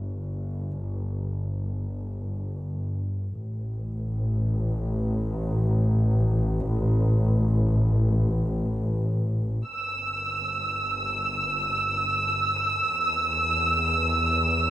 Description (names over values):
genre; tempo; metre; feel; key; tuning
ambient; free time; none; none; unclear; A4 = 440 Hz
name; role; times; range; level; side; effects
warm studio double bass section; bass; 0.0-14.7 s; G1 to E2; -25 LUFS; equal; none
muted studio violin section; texture; 9.7-14.7 s; E6; -24 LUFS; right 2 dB; none
room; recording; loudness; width
light reverb; cassette tape; -23 LUFS; side -13 dB against mid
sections
0.0-9.7 A section; 9.7-14.7 B section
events
fade-in on double bass section 0.0-9.7, 9.7-14.7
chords
0.0 N.C.; 9.7 Em/G; 12.8 N.C.